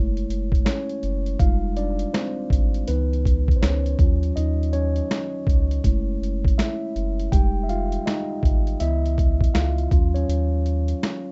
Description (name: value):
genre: lo-fi hip hop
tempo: 81 BPM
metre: 4/4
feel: swing 63% on 16ths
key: unclear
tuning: A4 = 440 Hz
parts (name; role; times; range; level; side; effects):
- mellow tine electric piano; accompaniment; 0.0-11.3 s; Fb3 to G5; -30 LUFS; equal; low-pass filter
- round analog bass; bass; 0.0-10.9 s; F1 to Eb2; -25 LUFS; equal; none
- boom bap sampler-style drum kit; drums; 0.2-11.2 s; finger snaps, hi-hat, kick drum, snare drum; -23 LUFS; equal; none
room: little or no reverb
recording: rough home demo mix, nothing above 7.8 kHz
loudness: -22 LUFS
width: mono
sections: 0.0-11.3 A section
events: tine electric piano solo 0.0-11.3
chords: 0.0 Gbm9; 1.4 Fm9; 2.9 Dbm9; 4.0 Ebm9; 5.8 Gbm9; 7.3 Fm9; 8.8 Dbm9; 9.9 Ebm9